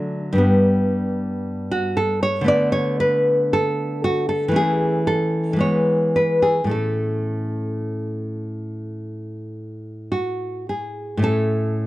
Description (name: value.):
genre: classical, baroque-style dance for nylon-string guitar.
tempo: 52-59 BPM.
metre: 4/4.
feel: rubato.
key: A major.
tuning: A4 = 438 Hz.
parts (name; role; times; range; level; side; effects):
nylon-string guitar; solo; 0.0-11.9 s; G2 to D5; -19 LUFS; equal; none.
room: small room ambience.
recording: dry, close 1970s-style studio recording.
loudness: -18 LUFS.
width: side -17 dB against mid.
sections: 0.0-11.2 A section.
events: none.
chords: 0.4 G; 2.5 Bm7/D; 4.6 A/E; 5.6 E; 6.7 A.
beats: 0.42 1.47 | 2.49 3.53 4.57 5.61 | 6.71 7.84 8.98 10.11 | 11.24.